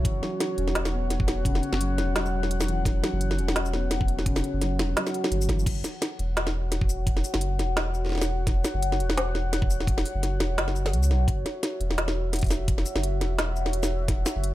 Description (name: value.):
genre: half-time drum and bass.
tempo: 171 BPM.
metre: 4/4.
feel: swing 56% on 16ths, half-time.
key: unclear.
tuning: A4 = 444 Hz.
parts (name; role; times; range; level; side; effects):
dark analog pad; sustained chords; 0.0-14.5 s; F#4 to F#5; -33 LUFS; left 2 dB; chorus, phaser, sidechain pumping.
felt-muted upright piano; arpeggios; 0.0-5.7 s; C#3 to C#4; -32 LUFS; left 1 dB; tape echo.
saturated sub bass; bass; 0.0-14.5 s; E1 to C#2; -27 LUFS; equal; none.
electronic kick drum; drums; 0.0-14.2 s; none; -26 LUFS; equal; small room reverb.
organic electronic drum kit; drums; 0.1-14.5 s; crash cymbal, hi-hat, shaker, snare drum; -29 LUFS; equal; overdrive, small room reverb.
room: little or no reverb.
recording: none.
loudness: -23 LUFS.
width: side -15 dB against mid.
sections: 0.0-5.7 A section; 5.7-14.5 A section.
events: drop 0.0-5.7, 5.7-14.5.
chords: 0.0 F#5.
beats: | 0.05 0.40 0.75 1.10 | 1.45 1.80 2.16 2.51 | 2.86 3.21 3.56 3.91 | 4.26 4.61 4.96 5.31 | 5.67 6.01 6.37 6.72 | 7.07 7.42 7.77 8.12 | 8.47 8.82 9.17 9.52 | 9.88 10.23 10.58 10.93 | 11.28 11.63 11.98 12.33 | 12.68 13.03 13.38 13.73 | 14.09 14.44.